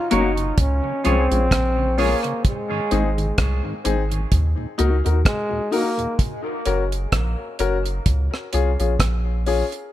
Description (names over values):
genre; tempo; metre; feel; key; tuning
dub reggae; 64 BPM; 4/4; swing 57% on 16ths; unclear; A4 = 440 Hz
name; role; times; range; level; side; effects
clear trombone; melody; 0.0-6.2 s; Ab3 to F4; -26 LUFS; equal; dub echo
clean electric guitar; accompaniment; 0.1-2.2 s; F4 to Db5; -29 LUFS; right 5 dB; spring reverb, dub echo
mellow tonewheel organ; accompaniment; 0.1-6.1 s; Eb2 to Gb4; -30 LUFS; equal; chorus vibrato, stopped rotary speaker, dub echo
warm upright piano; stabs; 0.1-9.6 s; Bb3 to Bb4; -26 LUFS; left 6 dB; dub echo
soft dub sub bass; bass; 0.1-9.6 s; Gb1 to Eb2; -21 LUFS; equal; none
deep reggae drum kit; drums; 0.1-9.9 s; hi-hat, kick drum, rim click; -22 LUFS; right 1 dB; none
room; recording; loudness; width
small room reverb; none; -18 LUFS; side -13 dB against mid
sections
0.0-9.9 A section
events
break 2.4-9.9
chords
0.0 Gb; 0.6 Db; 2.4 Ab; 4.3 Ebm; 6.2 Gb; 8.1 Db